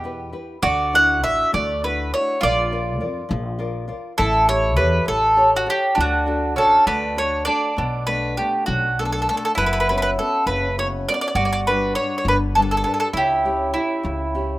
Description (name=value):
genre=italian folk, Italian serenade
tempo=67 BPM (dotted quarters)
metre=6/8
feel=straight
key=D major, B minor from 7.8 s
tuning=A4 = 439 Hz
part: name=bowl-back mandolin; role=second line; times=0.0-14.6 s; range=C#4 to G4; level=-26 LUFS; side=right 3 dB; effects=none
part: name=nylon-string guitar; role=accompaniment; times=0.0-14.6 s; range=B2 to D5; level=-27 LUFS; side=left 2 dB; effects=none
part: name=upright bass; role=bass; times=0.0-14.6 s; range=F#1 to F2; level=-26 LUFS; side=equal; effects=none
part: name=bowl-back mandolin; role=melody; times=0.6-14.6 s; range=F#4 to F#5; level=-19 LUFS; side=right 1 dB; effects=none
room=light reverb, small room ambience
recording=rough home demo mix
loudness=-17 LUFS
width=side -17 dB against mid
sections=0.0-7.8 A section; 7.8-14.6 B section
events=none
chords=0.0 Em; 0.6 Dadd9; 2.4 Bb; 4.2 A7; 6.0 D; 7.8 Bm7; 9.6 F#sus4; 11.4 G; 13.1 C#dim